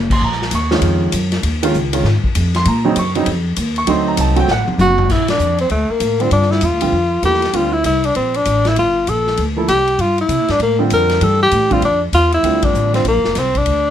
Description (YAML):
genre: modal jazz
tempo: 196 BPM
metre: 4/4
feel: swing 63% on 8ths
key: Eb dorian, G dorian from 5.1 s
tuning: A4 = 438 Hz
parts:
  - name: upright bass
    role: bass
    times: 0.0-13.9 s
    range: F1 to C3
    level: -18 LUFS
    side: equal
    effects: none
  - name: warm grand piano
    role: accompaniment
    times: 0.1-13.0 s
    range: Db3 to Db6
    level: -18 LUFS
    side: right 3 dB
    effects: none
  - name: swinging big-band drum kit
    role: drums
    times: 0.1-13.7 s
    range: crash cymbal, hi-hat, kick drum, ride cymbal, snare drum, toms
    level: -22 LUFS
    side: left 2 dB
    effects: none
  - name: breathy tenor saxophone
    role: melody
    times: 4.8-13.9 s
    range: A3 to Bb4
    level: -15 LUFS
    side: left 1 dB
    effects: none
room: light reverb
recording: none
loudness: -13 LUFS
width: side -10 dB against mid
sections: 0.0-5.1 A section; 5.1-13.9 B section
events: drum fill 4.5-5.1; band accent 5.2, 12.6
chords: 0.0 Ebm11; 3.9 D7b9; 5.1 Gm11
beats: | 0.22 0.52 0.83 1.13 | 1.44 1.74 2.05 2.35 | 2.66 2.96 3.27 3.57 | 3.88 4.18 4.49 4.79 | 5.10 5.40 5.71 6.01 | 6.32 6.62 6.93 7.24 | 7.54 7.85 8.15 8.46 | 8.77 9.07 9.38 9.68 | 9.99 10.29 10.60 10.91 | 11.21 11.52 11.82 12.13 | 12.44 12.74 13.05 13.35 | 13.66